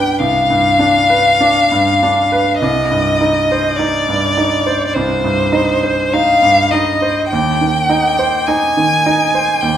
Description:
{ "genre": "classical, romantic duo for violin and grand piano", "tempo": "51 BPM", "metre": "4/4", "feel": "rubato", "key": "C minor", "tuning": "A4 = 439 Hz", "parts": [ { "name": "rich violin", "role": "melody", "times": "0.0-9.8 s", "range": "C5 to Ab5", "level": "-13 LUFS", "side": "left 1 dB", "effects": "none" }, { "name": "bright grand piano", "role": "accompaniment", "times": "0.0-9.8 s", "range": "C2 to C5", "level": "-16 LUFS", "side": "right 2 dB", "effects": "none" } ], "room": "wet recital hall reverb, RT60 1.4 s", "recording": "none", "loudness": "-11 LUFS", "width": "side -10 dB against mid", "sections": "0.0-9.8 A section", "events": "none", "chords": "0.0 G7/C; 2.6 Cm; 7.3 Cm/Eb" }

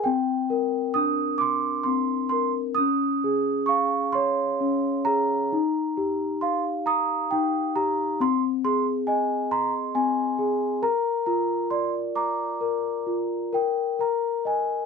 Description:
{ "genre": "children's music, lullaby", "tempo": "44 BPM (dotted quarters)", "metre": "6/8", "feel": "rubato", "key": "Eb major", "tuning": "A4 = 440 Hz", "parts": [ { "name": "large celesta", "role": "solo", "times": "0.0-14.9 s", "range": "C4 to Eb6", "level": "-22 LUFS", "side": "left 1 dB", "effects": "none" } ], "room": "light reverb", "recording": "dark, warm production", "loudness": "-22 LUFS", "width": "side -5 dB against mid", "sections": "0.0-13.5 A section; 13.5-14.9 B section", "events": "none", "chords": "0.1 Bbadd9; 2.8 Db; 5.5 Ebadd9; 8.2 Ab; 10.8 Bb; 13.5 Eb" }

